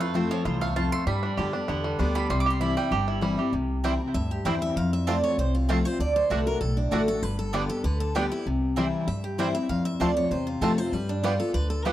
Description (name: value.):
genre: bluegrass.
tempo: 195 BPM.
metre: 4/4.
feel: straight.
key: C major.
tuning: A4 = 440 Hz.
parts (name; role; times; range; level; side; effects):
picked steel-string acoustic guitar; accompaniment; 0.0-11.9 s; E2 to G4; -27 LUFS; left 2 dB; none.
bluegrass banjo; arpeggios; 0.0-11.9 s; F3 to G4; -32 LUFS; right 3 dB; tape echo.
mandolin; stabs; 0.0-11.9 s; A3 to D6; -33 LUFS; right 5 dB; tape echo.
upright bass; bass; 0.0-11.9 s; G1 to G2; -29 LUFS; equal; none.
picked steel-string acoustic guitar; melody; 4.1-11.9 s; D4 to F5; -30 LUFS; right 2 dB; none.
room: small room ambience.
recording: dry, close 1970s-style studio recording.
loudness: -23 LUFS.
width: side -13 dB against mid.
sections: 0.0-3.5 A section; 3.5-11.9 B section.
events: mandolin solo 0.0-3.5.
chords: 0.0 F; 1.1 G; 2.3 C; 4.8 F; 6.0 D; 7.2 G; 8.5 C; 9.7 F; 10.9 G7.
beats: 0.15 0.46 0.77 | 1.07 1.38 1.69 1.99 | 2.30 2.61 2.92 3.22 | 3.53 3.84 4.15 4.46 | 4.76 5.07 5.38 5.69 | 6.00 6.30 6.61 6.92 | 7.23 7.54 7.85 8.15 | 8.46 8.77 9.08 9.39 | 9.70 10.00 10.31 10.62 | 10.93 11.24 11.55 11.86.